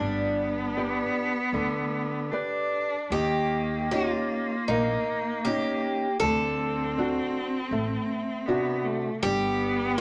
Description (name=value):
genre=fado-style ballad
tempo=79 BPM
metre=4/4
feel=rubato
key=unclear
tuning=A4 = 441 Hz
part: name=picked twelve-string acoustic guitar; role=melody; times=0.0-10.0 s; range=D4 to A4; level=-31 LUFS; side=equal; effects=none
part: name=rich cello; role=second line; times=0.0-10.0 s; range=A3 to D4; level=-32 LUFS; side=equal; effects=none
part: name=nylon-string guitar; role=accompaniment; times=0.0-10.0 s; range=C3 to D5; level=-32 LUFS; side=equal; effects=none
part: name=upright bass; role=bass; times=0.0-10.0 s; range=G1 to Eb2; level=-37 LUFS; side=equal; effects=none
room=wet club reverb, RT60 0.7 s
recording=none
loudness=-27 LUFS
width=mono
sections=0.0-10.0 A section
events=none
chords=0.0 G; 3.1 Eb7; 6.2 D7; 9.2 G